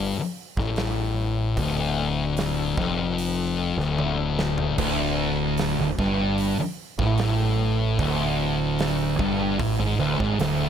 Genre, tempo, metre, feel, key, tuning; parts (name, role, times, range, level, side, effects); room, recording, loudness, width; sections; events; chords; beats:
stoner and doom metal; 75 BPM; 4/4; straight; D minor; A4 = 440 Hz
thick fuzz guitar; riff; 0.0-10.7 s; D2 to A2; -24 LUFS; left 5 dB; distortion
growling fingered electric bass; bass; 0.0-10.7 s; D1 to A1; -30 LUFS; right 2 dB; overdrive, tube saturation
big rock drum kit; drums; 0.6-10.6 s; crash cymbal, hi-hat, kick drum, snare drum, toms; -31 LUFS; right 2 dB
thick fuzz guitar; riff; 4.8-10.7 s; D2 to A2; -26 LUFS; right 12 dB; distortion
studio reverb; -22 LUFS; side -8 dB against mid
0.0-10.7 A section
drum fill 4.0-4.8
0.0 Dm
0.78 | 1.58 2.38 3.18 3.98 | 4.79 5.59 6.39 7.19 | 8.00 8.80 9.61 10.41